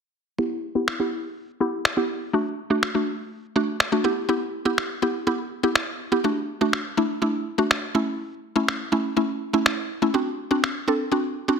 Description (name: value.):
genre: dance-pop.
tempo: 123 BPM.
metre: 4/4.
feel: straight.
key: D major.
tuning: A4 = 439 Hz.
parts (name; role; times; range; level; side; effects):
mallet-like synth pluck; accompaniment; 0.4-11.6 s; A3 to A4; -23 LUFS; equal; chorus, low-pass filter.
electronic finger snaps; drums; 0.9-10.7 s; none; -23 LUFS; equal; soft clipping on snare.
room: moderate digital room reverb, RT60 1.2 s.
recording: dense, heavily limited modern master.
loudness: -22 LUFS.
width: side -6 dB against mid.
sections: 0.4-4.3 A section; 4.3-11.6 B section.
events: filter sweep on synth pluck 0.4-4.3.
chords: 0.4 G6; 2.3 D; 4.0 G6; 6.2 D; 8.0 A; 10.1 D7.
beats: | 0.39 0.88 1.36 1.85 | 2.34 2.83 3.32 3.80 | 4.29 4.78 5.27 5.75 | 6.24 6.73 7.22 7.71 | 8.19 8.68 9.17 9.66 | 10.14 10.63 11.12.